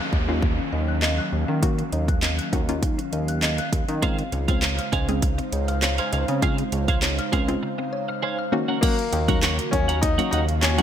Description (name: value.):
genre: dance-pop.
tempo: 100 BPM.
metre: 4/4.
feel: straight.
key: Eb dorian.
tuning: A4 = 440 Hz.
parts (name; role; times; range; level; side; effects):
airy breathy pad; sustained chords; 0.0-10.8 s; Db3 to F5; -30 LUFS; right 1 dB; chorus, sidechain pumping.
mallet-like synth pluck; arpeggios; 0.0-8.8 s; Db3 to Gb6; -32 LUFS; left 5 dB; chorus, sidechain pumping, ping-pong delay.
downlifter; sound effects; 0.0-4.0 s; none; -35 LUFS; right 1 dB; none.
chorused synth bass; bass; 0.1-10.8 s; Db2 to Eb3; -25 LUFS; equal; sidechain pumping.
house drum kit; drums; 0.1-10.8 s; crash cymbal, handclaps, hi-hat, kick drum, snare drum; -24 LUFS; equal; gated reverb.
hollow square pluck; accompaniment; 0.3-10.8 s; Gb3 to Ab4; -28 LUFS; left 2 dB; chorus, sidechain pumping.
twelve-string electric guitar; riff; 4.0-10.8 s; Ab4 to Gb5; -30 LUFS; right 6 dB; analog chorus.
clear baby grand piano; melody; 8.8-10.8 s; Bb3 to Eb4; -26 LUFS; left 4 dB; none.
room: light reverb, digital ambience.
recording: bright 1980s-style digital production.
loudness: -21 LUFS.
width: side -9 dB against mid.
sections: 0.0-8.8 A section; 8.8-10.8 B section.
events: break 7.6-8.8.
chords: 0.0 Ebm7; 4.0 Dbmaj7; 8.5 Ebm7.